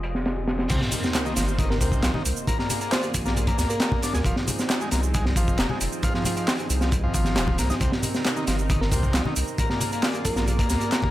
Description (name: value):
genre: breakbeat, breaks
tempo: 135 BPM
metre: 4/4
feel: straight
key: F dorian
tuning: A4 = 439 Hz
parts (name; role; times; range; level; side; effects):
- lush unison pad; sustained chords; 0.0-11.1 s; C3 to Eb5; -32 LUFS; right 1 dB; chorus, vintage 12-bit sampler grit, sidechain pumping
- saturated sub bass; bass; 0.0-10.8 s; Eb1 to Eb2; -26 LUFS; equal; none
- crunchy breakbeat drum kit; drums; 0.0-11.1 s; crash cymbal, hi-hat, kick drum, snare drum; -24 LUFS; equal; low-pass filter on kick, low-pass filter on hats, low-pass filter on cymbals, low-pass filter on snare, low-pass filter on room
- overdriven combo organ; riff; 0.7-11.1 s; C3 to Bb4; -30 LUFS; left 1 dB; vintage 12-bit sampler grit, digital delay
- punchy analog drum machine; drums; 0.7-11.0 s; handclaps, hi-hat, shaker; -31 LUFS; right 1 dB; none
- congas; percussion; 0.7-11.1 s; none; -32 LUFS; left 2 dB; none
- sub drop; sound effects; 0.7-2.5 s; none; -34 LUFS; equal; none
- bell-like FM electric piano; melody; 1.7-4.3, 8.8-10.9 s; Bb4 to C5; -34 LUFS; right 1 dB; chorus, tremolo, small speaker sound, digital delay
room: little or no reverb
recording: none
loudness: -21 LUFS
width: side -14 dB against mid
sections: 0.7-11.1 A section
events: drop 0.7-11.1; impact 0.7-2.5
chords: 0.0 Fm7; 0.7 Cm7; 2.5 Bb7; 4.3 Fm7; 7.8 Cm7; 9.6 Bb7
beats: 0.26 | 0.70 1.14 1.59 2.03 | 2.48 2.92 3.37 3.81 | 4.25 4.70 5.14 5.59 | 6.03 6.48 6.92 7.37 | 7.81 8.26 8.70 9.14 | 9.59 10.03 10.48 10.92